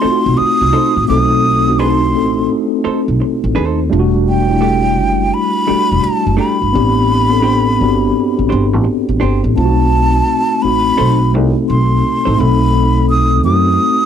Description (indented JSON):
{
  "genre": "R&B, neo-soul",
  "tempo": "85 BPM",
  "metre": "4/4",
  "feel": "swing 62% on 16ths",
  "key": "unclear",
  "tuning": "A4 = 441 Hz",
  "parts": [
    { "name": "breathy hollow jazz flute", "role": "melody", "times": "0.0-14.1 s", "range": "G5 to D#6", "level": "-16 LUFS", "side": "left 1 dB", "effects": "slapback echo" },
    { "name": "hollow-body jazz guitar", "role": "second line", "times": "0.0-12.3 s", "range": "A3 to C5", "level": "-19 LUFS", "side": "right 6 dB", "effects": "none" },
    { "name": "mellow tine electric piano", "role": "accompaniment", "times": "0.0-14.1 s", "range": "G3 to A4", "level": "-15 LUFS", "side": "left 2 dB", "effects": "medium stereo tremolo" },
    { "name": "upright bass", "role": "bass", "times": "0.0-13.8 s", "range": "E1 to F#2", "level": "-15 LUFS", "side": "equal", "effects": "none" }
  ],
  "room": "studio reverb",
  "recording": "dry, close 1970s-style studio recording",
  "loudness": "-11 LUFS",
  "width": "side -8 dB against mid",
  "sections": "0.0-9.6 A section; 9.6-14.1 B section",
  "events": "none",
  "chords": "0.0 B7b9; 3.9 Em11; 6.7 Am11; 9.6 B7b9"
}